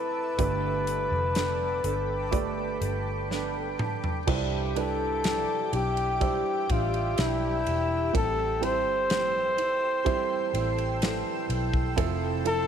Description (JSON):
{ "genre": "pop ballad", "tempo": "62 BPM", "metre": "4/4", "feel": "straight", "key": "C major", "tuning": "A4 = 440 Hz", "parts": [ { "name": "breathy flugelhorn", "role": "melody", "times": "0.0-12.7 s", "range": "E4 to C5", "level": "-28 LUFS", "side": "left 2 dB", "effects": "none" }, { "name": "felt-muted upright piano", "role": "accompaniment", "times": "0.0-12.7 s", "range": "G2 to E5", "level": "-33 LUFS", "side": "right 12 dB", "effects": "none" }, { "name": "shimmering ambient pad", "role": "sustained chords", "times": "0.0-12.7 s", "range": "G4 to E6", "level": "-35 LUFS", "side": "left 2 dB", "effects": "chorus, built-in reverb" }, { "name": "fingerpicked old ladder-braced acoustic guitar", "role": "arpeggios", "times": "0.0-12.7 s", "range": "A2 to A4", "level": "-36 LUFS", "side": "right 12 dB", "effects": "none" }, { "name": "vintage muted fingered electric bass", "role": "bass", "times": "0.4-12.7 s", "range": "E1 to C2", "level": "-32 LUFS", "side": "left 1 dB", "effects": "none" }, { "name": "modern studio drum kit", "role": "drums", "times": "0.4-12.7 s", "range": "crash cymbal, hi-hat, kick drum, ride cymbal, snare drum, toms", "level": "-31 LUFS", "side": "left 1 dB", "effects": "none" } ], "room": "light reverb, small room ambience", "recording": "1960s-style stereo", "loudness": "-25 LUFS", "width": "side -8 dB against mid", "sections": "0.0-4.3 A section; 4.3-12.7 B section", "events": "drum fill 3.3-4.3", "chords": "0.4 Gadd9; 4.3 Cadd9; 8.1 Am7; 12.0 Fmaj7" }